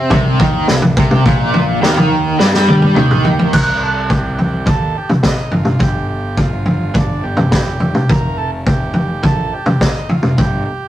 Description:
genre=psychedelic rock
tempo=105 BPM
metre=4/4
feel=straight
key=C dorian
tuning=A4 = 440 Hz
part: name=cranked stack guitar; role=riff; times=0.0-3.5 s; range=Bb2 to C4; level=-15 LUFS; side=equal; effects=overdrive, tremolo
part: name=fuzz picked electric bass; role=bass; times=0.0-10.6 s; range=F1 to G2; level=-21 LUFS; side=equal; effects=overdrive
part: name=vintage drum kit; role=drums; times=0.1-10.5 s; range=crash cymbal, kick drum, snare drum, toms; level=-13 LUFS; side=equal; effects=none
part: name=combo organ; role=melody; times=2.7-10.9 s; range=D4 to Bb4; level=-23 LUFS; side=right 4 dB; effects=spring reverb
room=light reverb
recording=rough rehearsal-room recording, warm saturation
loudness=-12 LUFS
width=side -13 dB against mid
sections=0.0-3.5 A section; 3.5-10.9 B section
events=drum fill 2.4-3.5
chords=0.0 Cm7; 3.5 Cm; 5.5 Fsus2; 8.1 Fsus4

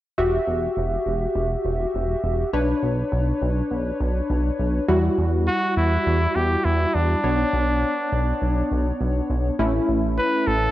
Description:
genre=synth-pop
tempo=102 BPM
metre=4/4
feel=straight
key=unclear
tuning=A4 = 440 Hz
part: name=funky polysynth comp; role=accompaniment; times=0.2-10.7 s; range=G3 to E5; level=-24 LUFS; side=left 1 dB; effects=chorus
part: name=chorused synth bass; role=bass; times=0.2-10.7 s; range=E1 to E2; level=-23 LUFS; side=equal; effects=none
part: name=warm trumpet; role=melody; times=5.5-10.7 s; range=D4 to B4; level=-23 LUFS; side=equal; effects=tape echo
room=moderate plate reverb, RT60 2.4 s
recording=worn, warbling old tape, cassette tape, warbly pitch drift, nothing above 10.4 kHz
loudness=-20 LUFS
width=side -14 dB against mid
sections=0.2-4.9 A section; 4.9-10.7 B section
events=none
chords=0.2 Emadd9; 2.5 Bmadd9; 4.9 Emadd9; 7.2 Bmadd9; 9.6 A

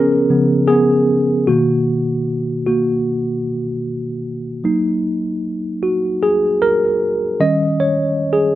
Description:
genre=R&B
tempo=76 BPM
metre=4/4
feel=swing 60% on 16ths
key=F# major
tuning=A4 = 440 Hz
part: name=mellow tine electric piano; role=solo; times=0.0-8.6 s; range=B2 to D#5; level=-15 LUFS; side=equal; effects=medium stereo tremolo
room=little or no reverb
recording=recorded outdoors, with no room sound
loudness=-15 LUFS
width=side -14 dB against mid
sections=0.0-4.6 A section; 4.6-8.6 B section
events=tine electric piano solo 0.0-4.6, 4.6-8.6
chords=0.0 C#7; 1.5 Bmaj7; 4.6 F#6; 7.4 D#7

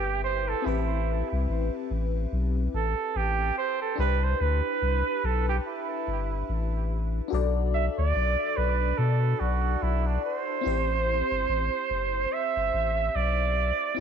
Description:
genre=lovers rock reggae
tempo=72 BPM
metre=4/4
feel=swing 58% on 16ths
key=A dorian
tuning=A4 = 440 Hz
part: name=clear flugelhorn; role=melody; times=0.0-14.0 s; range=D4 to E5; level=-28 LUFS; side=right 7 dB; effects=tape echo
part: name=FM electric piano with soft pad layer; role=accompaniment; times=0.0-14.0 s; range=C4 to D5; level=-33 LUFS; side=left 9 dB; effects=chorus, phaser
part: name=soft dub sub bass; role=bass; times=0.0-14.0 s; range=F#1 to B2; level=-27 LUFS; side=left 1 dB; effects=none
room=moderate echo chamber reverb, RT60 2.1 s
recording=1960s-style stereo with parts hard left and right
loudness=-24 LUFS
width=side -7 dB against mid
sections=0.0-10.6 A section; 10.6-14.0 B section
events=flugelhorn solo 0.0-10.6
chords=0.0 Am7; 4.0 Cmaj7; 7.3 Bm7; 10.6 Am7

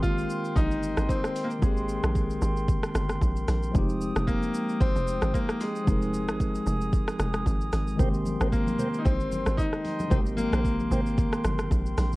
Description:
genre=amapiano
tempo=113 BPM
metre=4/4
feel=swing 55% on 16ths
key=Ab major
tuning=A4 = 440 Hz
part: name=bright concert grand piano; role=melody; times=0.0-11.4 s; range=Ab3 to F4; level=-31 LUFS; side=left 1 dB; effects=tape echo
part: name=bright tine electric piano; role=accompaniment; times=0.0-12.2 s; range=Eb3 to Bb4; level=-32 LUFS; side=left 1 dB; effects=medium stereo tremolo
part: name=glass harmonica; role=sustained chords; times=0.0-12.2 s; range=Ab3 to Eb6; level=-37 LUFS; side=equal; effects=sidechain pumping
part: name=tight log drum bass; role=bass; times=0.0-12.2 s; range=F1 to Bb1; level=-28 LUFS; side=equal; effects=none
part: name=afro-pop drum kit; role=drums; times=0.0-12.2 s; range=hi-hat, kick drum, rim click, shaker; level=-28 LUFS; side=equal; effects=none
part: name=mellow tonewheel organ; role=stabs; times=8.0-11.0 s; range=Bb4 to G5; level=-37 LUFS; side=right 1 dB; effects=slow rotary speaker, tape echo
part: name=congas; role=percussion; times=8.0-12.2 s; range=none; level=-35 LUFS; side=right 1 dB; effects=none
room=digital ambience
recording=worn, warbling old tape, cassette tape, warbly pitch drift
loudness=-24 LUFS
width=side -20 dB against mid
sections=0.0-12.2 A section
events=none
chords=0.0 Abmaj9; 3.7 Fm9; 8.0 Abmaj9

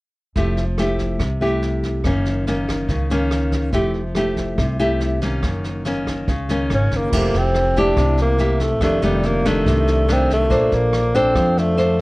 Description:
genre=bossa nova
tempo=142 BPM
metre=4/4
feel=straight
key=F major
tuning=A4 = 440 Hz
part: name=jazz brush drum kit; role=drums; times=0.3-12.0 s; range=crash cymbal, kick drum, rim click, snare drum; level=-27 LUFS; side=equal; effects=none
part: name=nylon-string guitar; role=accompaniment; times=0.4-12.0 s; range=F2 to C5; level=-20 LUFS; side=left 1 dB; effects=none
part: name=upright bass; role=bass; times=0.4-12.0 s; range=F1 to F2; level=-22 LUFS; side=equal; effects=none
part: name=breathy tenor saxophone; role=melody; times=6.7-12.0 s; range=G3 to D4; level=-20 LUFS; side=equal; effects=none
part: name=barky tine electric piano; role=accompaniment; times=7.1-12.0 s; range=E4 to D5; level=-28 LUFS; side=right 2 dB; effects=overdrive
room=little or no reverb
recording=worn, warbling old tape, cassette tape, warbly pitch drift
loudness=-16 LUFS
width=side -21 dB against mid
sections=0.3-7.1 A section; 7.1-12.0 B section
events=none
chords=0.3 Fmaj9; 2.0 Gb6; 3.7 Fmaj9; 5.4 Gb6; 7.1 Fmaj9; 8.8 F13; 10.5 Bbmaj9

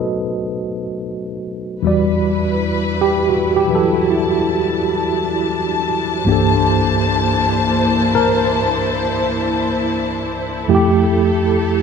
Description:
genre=jazz ballad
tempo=54 BPM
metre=4/4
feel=swing 67% on 8ths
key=E minor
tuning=A4 = 440 Hz
part: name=mellow tine electric piano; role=accompaniment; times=0.0-11.8 s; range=C2 to D#5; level=-16 LUFS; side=right 1 dB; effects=overdrive, medium stereo tremolo
part: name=dark studio string section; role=sustained chords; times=1.8-11.8 s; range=Bb3 to A5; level=-19 LUFS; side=left 2 dB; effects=none
room=moderate studio reverb, RT60 0.7 s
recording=none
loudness=-15 LUFS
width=side -6 dB against mid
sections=0.0-1.8 A section; 1.8-11.8 B section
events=none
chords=0.0 B7; 1.8 Em7; 6.3 C13; 10.7 Fmaj9

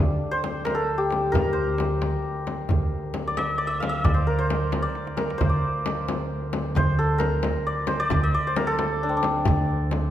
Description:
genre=Persian modal ensemble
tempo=89 BPM (dotted quarters)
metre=6/8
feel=straight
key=D dastgah shur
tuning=A4 = 440 Hz
part: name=santur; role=melody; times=0.0-10.1 s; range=C4 to F5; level=-26 LUFS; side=equal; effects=none
part: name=upright bass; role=bass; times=0.0-10.1 s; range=D2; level=-25 LUFS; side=right 1 dB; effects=none
part: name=clear double bass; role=drone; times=0.0-10.1 s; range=D2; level=-32 LUFS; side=equal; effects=none
part: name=frame drum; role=percussion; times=0.4-10.0 s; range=none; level=-30 LUFS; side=left 4 dB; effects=none
part: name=tombak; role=percussion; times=0.4-10.0 s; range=none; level=-29 LUFS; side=right 3 dB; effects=none
room=moderate scoring stage reverb, RT60 1.6 s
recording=none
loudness=-22 LUFS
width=side -11 dB against mid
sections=0.0-10.1 A section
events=drum fill 5.0-5.4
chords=none

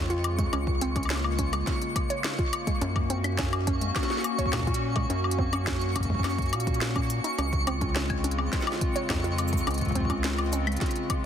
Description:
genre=IDM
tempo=105 BPM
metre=4/4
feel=straight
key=Db major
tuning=A4 = 440 Hz
part: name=hollow soft pad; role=sustained chords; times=0.0-11.3 s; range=Db3 to Gb4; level=-32 LUFS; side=left 2 dB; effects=chorus
part: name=rubbery square bass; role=bass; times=0.0-10.8 s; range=Db2 to Bb2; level=-30 LUFS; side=equal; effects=none
part: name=twinkling granular texture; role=texture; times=0.0-11.3 s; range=Db6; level=-35 LUFS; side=right 1 dB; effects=built-in reverb
part: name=warbly dusty pluck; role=arpeggios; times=0.1-10.8 s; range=Ab3 to Db5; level=-34 LUFS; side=right 2 dB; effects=chorus, ping-pong delay
part: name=organic electronic drum kit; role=drums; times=0.1-11.2 s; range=hi-hat, shaker, snare drum, woodblock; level=-32 LUFS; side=left 3 dB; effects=ping-pong delay
part: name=electronic kick drum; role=drums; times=0.4-11.2 s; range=none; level=-30 LUFS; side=equal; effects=none
room=light reverb, digital ambience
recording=dense, heavily limited modern master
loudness=-25 LUFS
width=side -9 dB against mid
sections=0.0-11.3 A section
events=none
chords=0.0 Dbmaj7; 2.8 Gb; 7.4 Dbmaj7

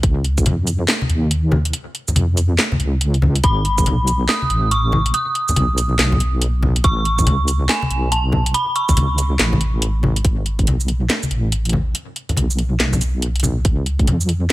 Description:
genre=deep dubstep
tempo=141 BPM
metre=4/4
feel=swing 62% on 16ths, half-time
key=G# phrygian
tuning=A4 = 440 Hz
part: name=deep soft wobble bass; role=bass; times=0.0-14.5 s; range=G#1 to E#2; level=-18 LUFS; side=equal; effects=chorus
part: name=electronic kick drum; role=drums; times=0.0-0.4, 3.4-3.8, 6.8-10.7, 13.7-14.1 s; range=none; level=-17 LUFS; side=equal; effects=none
part: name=garage drum kit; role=drums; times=0.0-14.5 s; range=handclaps, hi-hat, shaker, snare drum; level=-20 LUFS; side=equal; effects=none
part: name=congas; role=percussion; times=0.5-14.2 s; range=none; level=-22 LUFS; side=left 1 dB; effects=none
part: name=dark detuned synth bell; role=melody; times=3.4-9.2 s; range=G#5 to D#6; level=-21 LUFS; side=right 1 dB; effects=chorus, dub echo
room=light reverb, digital ambience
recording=none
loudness=-15 LUFS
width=side -17 dB against mid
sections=0.0-10.2 A section; 10.2-14.5 B section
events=drop 0.0-10.2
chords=0.0 C#add9; 3.4 G#m; 6.8 A; 10.2 G#m; 13.7 C#

